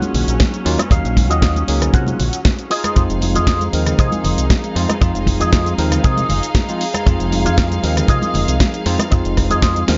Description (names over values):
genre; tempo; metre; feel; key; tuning
nu-disco, nu disco; 117 BPM; 4/4; straight; unclear; A4 = 440 Hz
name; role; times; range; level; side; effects
bell-like tine electric piano; accompaniment; 0.0-10.0 s; F3 to F5; -24 LUFS; equal; sidechain pumping, dub echo
rich studio string section; sustained chords; 0.0-10.0 s; Gb3 to F5; -28 LUFS; equal; sidechain pumping
electric guitar with an envelope filter; riff; 0.0-9.8 s; F4 to Gb5; -25 LUFS; equal; ensemble chorus, dub echo
house drum kit; drums; 0.0-10.0 s; hi-hat, rim click, shaker, snare drum; -25 LUFS; equal; none
congas; percussion; 0.0-9.9 s; none; -29 LUFS; equal; none
fingered electric bass with an envelope filter; bass; 0.1-10.0 s; F1 to C3; -22 LUFS; equal; none
kick drum; drums; 0.4-9.7 s; none; -17 LUFS; equal; none
room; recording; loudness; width
light reverb, small room ambience; nothing above 7.6 kHz; -16 LUFS; mono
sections
0.0-10.0 A section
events
none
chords
0.0 Ebm9; 2.7 Fm7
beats
0.40 | 0.91 1.43 1.94 2.45 | 2.96 3.48 3.99 4.50 | 5.01 5.53 6.04 6.55 | 7.07 7.58 8.09 8.60 | 9.12 9.63